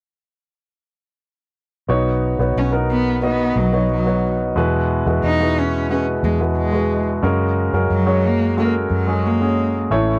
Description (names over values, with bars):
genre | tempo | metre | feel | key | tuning
pop | 90 BPM | 4/4 | straight | B major | A4 = 440 Hz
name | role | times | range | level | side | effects
warm upright piano | accompaniment | 1.9-10.2 s | A2 to D#5 | -22 LUFS | equal | cassette tape
vintage muted fingered electric bass | bass | 1.9-10.2 s | A1 to F#2 | -24 LUFS | equal | none
rich cello | melody | 2.6-9.7 s | F#3 to D#4 | -24 LUFS | equal | cassette tape
room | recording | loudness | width
light reverb | home recording on cassette | -19 LUFS | mono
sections
1.9-10.2 A section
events
none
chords
1.9 Badd9; 4.6 Eadd9; 7.2 F#add9